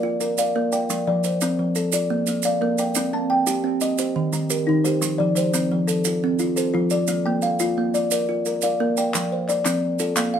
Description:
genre	southern african traditional, mbira-style interlocking cycle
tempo	116 BPM (dotted quarters)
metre	12/8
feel	straight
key	F mixolydian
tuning	A4 = 440 Hz
part	kalimba	arpeggios	0.0-10.4 s	Eb3 to A5	-23 LUFS	left 4 dB	none
part	kalimba	arpeggios	0.0-10.4 s	Eb3 to G5	-23 LUFS	right 4 dB	tape echo
part	maracas	percussion	0.2-10.3 s	none	-28 LUFS	right 8 dB	none
part	group handclap	percussion	9.1-10.3 s	none	-28 LUFS	left 3 dB	none
room	moderate studio reverb, RT60 0.6 s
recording	none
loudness	-19 LUFS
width	side -8 dB against mid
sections	0.0-9.1 A section; 9.1-10.4 B section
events	none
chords	0.0 Bb; 0.9 F; 1.9 Bb; 3.0 Cm; 4.0 Eb; 5.0 F; 7.1 Bb; 9.1 F

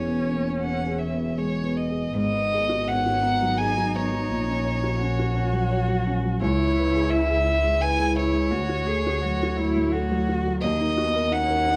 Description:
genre	neoclassical piano and strings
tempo	85 BPM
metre	3/4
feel	rubato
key	C# dorian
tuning	A4 = 439 Hz
part	rich violin	melody	0.0-11.8 s	C#5 to G#5	-28 LUFS	equal	none
part	dark cello	second line	0.0-11.8 s	A#3 to G#4	-31 LUFS	equal	none
part	felt-muted upright piano	accompaniment	0.0-11.8 s	C#2 to C#5	-29 LUFS	equal	none
part	warm double bass	bass	0.0-11.8 s	E1 to D#2	-30 LUFS	equal	none
room	moderate large studio reverb, RT60 1.1 s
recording	band playing live in one room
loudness	-24 LUFS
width	mono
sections	0.0-2.1 A section; 2.1-11.8 B section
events	none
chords	0.0 C#m7/E; 2.1 G#m7; 4.3 F#/A#; 6.4 C#m7; 8.5 D; 10.6 D#m

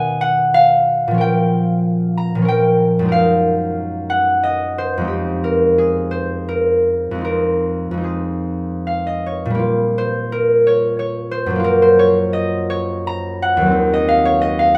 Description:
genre	classical, solo harp piece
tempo	69-96 BPM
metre	3/4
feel	rubato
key	Bb minor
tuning	A4 = 441 Hz
part	concert harp	solo	0.0-14.8 s	Eb2 to Bb5	-17 LUFS	equal	none
room	light reverb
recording	close, detailed microphones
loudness	-17 LUFS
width	mono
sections	0.0-9.6 A section; 9.6-14.8 A section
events	none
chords	0.0 Bmaj7; 1.2 Bbm6; 3.1 Gb69; 5.1 Fm9; 7.2 Fm7; 9.6 Bbm6; 11.6 Gbmaj7

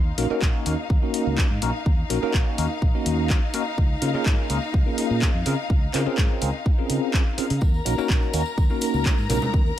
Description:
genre	filtered disco house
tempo	125 BPM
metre	4/4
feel	straight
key	Eb dorian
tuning	A4 = 440 Hz
part	warm studio string section	sustained chords	0.0-9.8 s	Eb4 to Bb5	-31 LUFS	left 4 dB	sidechain pumping
part	fingered electric bass	bass	0.0-9.7 s	Bb1 to Db3	-26 LUFS	equal	tube saturation, sidechain pumping
part	bell-like tine electric piano	accompaniment	0.2-9.4 s	Bb3 to Bb4	-27 LUFS	equal	medium stereo tremolo, phaser, sidechain pumping
part	punchy analog drum machine	drums	0.2-9.4 s	handclaps, hi-hat	-30 LUFS	left 1 dB	sidechain pumping on cymbals, sidechain pumping on hats
part	electronic kick drum	drums	0.4-9.6 s	none	-21 LUFS	equal	none
part	tambourine and congas	percussion	7.6-9.8 s	none	-33 LUFS	right 2 dB	sidechain pumping on perc
room	little or no reverb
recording	none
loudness	-20 LUFS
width	side -12 dB against mid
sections	0.0-9.8 A section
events	none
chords	0.0 Ebm7; 3.8 Db6; 5.5 Bbm9/Db; 7.6 Ebm7

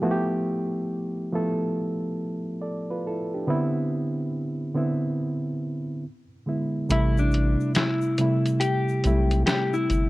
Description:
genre	lo-fi hip hop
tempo	70 BPM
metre	4/4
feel	swing 64% on 16ths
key	unclear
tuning	A4 = 439 Hz
part	reed electric piano	accompaniment	0.0-10.1 s	C3 to D5	-25 LUFS	right 1 dB	overdrive
part	mellow electric guitar	melody	6.9-10.1 s	D4 to G4	-26 LUFS	left 3 dB	none
part	soft dub sub bass	bass	6.9-10.1 s	G1 to B1	-23 LUFS	equal	none
part	dusty soul sampler-style drum kit	drums	6.9-10.1 s	hi-hat, snare drum	-26 LUFS	left 1 dB	none
part	tube shaker	percussion	6.9-10.1 s	none	-50 LUFS	left 10 dB	none
room	light reverb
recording	cassette tape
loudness	-23 LUFS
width	side -19 dB against mid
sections	0.0-6.9 A section; 6.9-10.1 B section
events	kick muted 6.9-10.1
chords	0.0 G13; 3.5 Cmaj9; 6.0 E7; 6.9 Am7

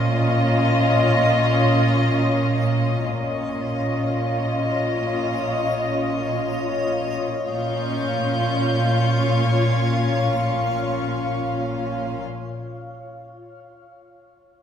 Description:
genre	cinematic, suspense film score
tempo	free time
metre	none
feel	none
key	Bb minor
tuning	A4 = 440 Hz
part	warm studio violin section	melody	0.0-12.2 s	Eb5 to F5	-28 LUFS	left 2 dB	none
part	dark studio violin section	second line	0.0-12.2 s	F4	-27 LUFS	equal	none
part	warm studio viola section	accompaniment	0.0-12.2 s	Db4	-27 LUFS	equal	none
part	backwards swelling texture	sustained chords	0.0-12.2 s	F4 to F5	-29 LUFS	left 2 dB	built-in reverb
part	dark studio double bass section	bass	0.0-12.2 s	Bb1	-26 LUFS	equal	none
part	warm studio cello section	bass	0.0-12.2 s	Bb2	-26 LUFS	right 1 dB	none
part	clear studio violin section	texture	7.5-11.3 s	Db6 to G6	-32 LUFS	left 3 dB	none
room	wet recital hall reverb, RT60 1.8 s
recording	recorded in a church or concert hall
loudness	-19 LUFS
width	side -8 dB against mid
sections	0.0-7.5 A section; 7.5-11.9 B section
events	none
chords	0.0 Dbadd9/Bb; 7.5 Bbm

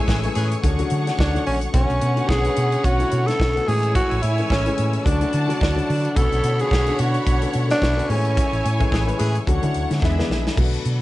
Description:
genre	disco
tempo	109 BPM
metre	4/4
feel	swing 56% on 16ths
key	B dorian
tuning	A4 = 440 Hz
part	growling tenor saxophone	melody	0.0-8.9 s	C#4 to A4	-23 LUFS	equal	none
part	dark studio string section	second line	0.0-10.6 s	B3 to A5	-28 LUFS	right 1 dB	none
part	warm baby grand piano	accompaniment	0.0-11.0 s	D3 to C#5	-27 LUFS	left 6 dB	none
part	clear studio string section	sustained chords	0.0-11.0 s	D4 to E6	-33 LUFS	left 2 dB	none
part	clear horn section	stabs	0.1-0.5, 8.9-9.4 s	E3 to G#4	-28 LUFS	equal	none
part	hollow-body short-scale fingered electric bass	bass	0.1-11.0 s	A1 to D3	-22 LUFS	equal	none
part	modern studio drum kit	drums	0.1-11.0 s	crash cymbal, hi-hat, kick drum, snare drum	-23 LUFS	equal	none
room	little or no reverb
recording	nothing above 10.8 kHz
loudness	-18 LUFS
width	side -16 dB against mid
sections	0.0-10.6 A section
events	band accent 0.0-1.7, 8.4-10.6; drum fill 10.0-10.6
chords	0.0 Amaj7; 0.6 Dmaj7; 1.7 Bm9; 3.7 Amaj7; 5.1 Dmaj7; 6.2 Bm9; 8.1 Amaj7; 9.5 Dmaj7; 10.0 E7

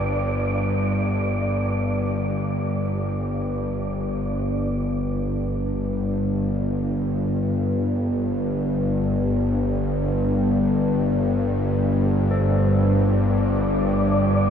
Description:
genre	dark ambient drone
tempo	free time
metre	none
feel	none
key	unclear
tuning	A4 = 439 Hz
part	dark analog pad	sustained chords	0.0-4.5 s	none	barely audible	none	none
part	bowed-like drone	drone	0.0-14.5 s	G1 to G2	-20 LUFS	equal	built-in reverb
part	wind-like tuned noise texture	texture	0.0-4.5, 13.2-14.5 s	D5	-30 LUFS	right 1 dB	built-in reverb
part	carillon bells	arpeggios	12.3-14.5 s	A4	-31 LUFS	left 5 dB	ping-pong delay
room	moderate huge ambient reverb, RT60 8.4 s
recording	dark, warm production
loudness	-20 LUFS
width	side -8 dB against mid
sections	0.0-4.5 A section; 4.5-14.5 B section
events	fade-in on church bells 4.5-14.5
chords	0.0 Gsus2

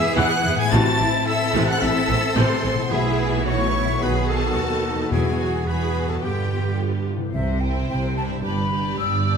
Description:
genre	cinematic, heroic adventure film score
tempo	109 BPM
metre	4/4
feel	straight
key	unclear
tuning	A4 = 441 Hz
part	clear symphonic violin section	melody	0.0-9.4 s	D5 to A6	-30 LUFS	left 3 dB	none
part	clear oboe	second line	0.0-6.8 s	E4 to A5	-32 LUFS	right 2 dB	none
part	dark symphonic violin section	second line	0.0-9.4 s	B3 to D5	-29 LUFS	left 4 dB	none
part	mellow clarinet	second line	0.0-6.8 s	E4 to A5	-31 LUFS	left 2 dB	none
part	concert harp	arpeggios	0.0-9.4 s	E2 to D5	-30 LUFS	left 10 dB	none
part	warm trumpet section	stabs	0.0-6.8 s	E4 to A5	-28 LUFS	right 2 dB	none
part	warm symphonic cello section	bass	0.0-9.4 s	G2 to A4	-28 LUFS	right 2 dB	none
part	rich symphonic viola section	accompaniment	0.2-9.4 s	C3 to G4	-28 LUFS	right 1 dB	none
part	clear symphonic double bass section	bass	0.2-9.4 s	G1 to G2	-25 LUFS	right 3 dB	none
part	mellow French horn section	sustained chords	0.7-7.3 s	A3 to F#4	-31 LUFS	left 4 dB	none
part	timpani	percussion	2.9-8.1 s	E2 to C3	-30 LUFS	equal	none
part	hollow small flute group	second line	7.3-9.4 s	E5 to E6	-27 LUFS	left 2 dB	none
room	wet recital hall reverb, RT60 1.7 s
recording	none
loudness	-19 LUFS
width	side -6 dB against mid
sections	0.0-7.3 A section; 7.3-9.4 B section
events	none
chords	0.0 E; 0.7 Am; 2.9 B7sus4; 4.0 B7; 5.1 Eadd9; 6.2 G7; 7.3 C; 8.4 G

